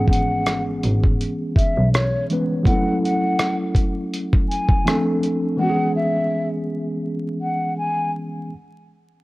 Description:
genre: lo-fi hip hop.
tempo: 82 BPM.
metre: 4/4.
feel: swing 56% on 16ths.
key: C# minor.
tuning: A4 = 440 Hz.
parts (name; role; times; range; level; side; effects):
breathy mellow silver concert flute; melody; 0.0-8.1 s; C#5 to G#5; -25 LUFS; left 1 dB; low-pass filter, analog delay.
tine electric piano; accompaniment; 0.0-8.5 s; E3 to B4; -22 LUFS; equal; overdrive, medium stereo tremolo, cassette tape, low-pass filter.
rich double bass; bass; 0.0-1.9 s; G#1 to B1; -21 LUFS; equal; none.
dusty soul sampler-style drum kit; drums; 0.1-5.4 s; hi-hat, kick drum, rim click; -19 LUFS; equal; none.
room: light reverb.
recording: worn, warbling old tape, cassette tape, vinyl crackle, warbly pitch drift.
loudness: -18 LUFS.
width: side -20 dB against mid.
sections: 0.0-8.5 A section.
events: none.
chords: 0.0 C#m7/G#; 2.7 A6; 4.9 Dm7; 5.6 C#m7.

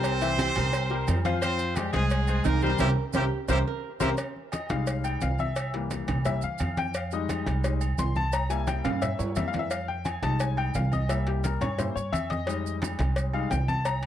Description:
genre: latin, salsa.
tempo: 174 BPM.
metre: 4/4.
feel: straight.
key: F minor.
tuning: A4 = 439 Hz.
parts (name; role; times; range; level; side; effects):
brilliant horn section; melody; 0.0-4.1 s; G3 to C5; -30 LUFS; right 1 dB; none.
lap resonator guitar; second line; 0.0-4.1 s; Eb4 to C5; -33 LUFS; right 11 dB; none.
bright upright piano; accompaniment; 0.0-14.1 s; E3 to C6; -31 LUFS; left 7 dB; none.
upright bass; bass; 0.0-14.1 s; C2 to G2; -28 LUFS; right 1 dB; none.
agogo bells and timbales; percussion; 0.0-14.0 s; none; -37 LUFS; right 7 dB; none.
congas; percussion; 0.0-14.1 s; none; -34 LUFS; equal; none.
cowbell; percussion; 0.0-14.1 s; none; -36 LUFS; left 1 dB; none.
maracas; percussion; 0.0-14.0 s; none; -43 LUFS; right 19 dB; none.
room: small room ambience.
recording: dry, close 1970s-style studio recording.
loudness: -25 LUFS.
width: side -11 dB against mid.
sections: 0.0-4.2 A section; 4.2-14.1 B section.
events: band accent 2.8-4.2; drum fill 3.5-4.2, 8.9-9.7; upright piano solo 4.2-14.1.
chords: 0.0 C7; 1.4 Fm; 2.8 C7(no3); 4.2 Fm7; 5.6 C7; 7.0 Fm7; 8.3 C7; 9.7 Fm7; 11.1 C7; 12.5 Fm7.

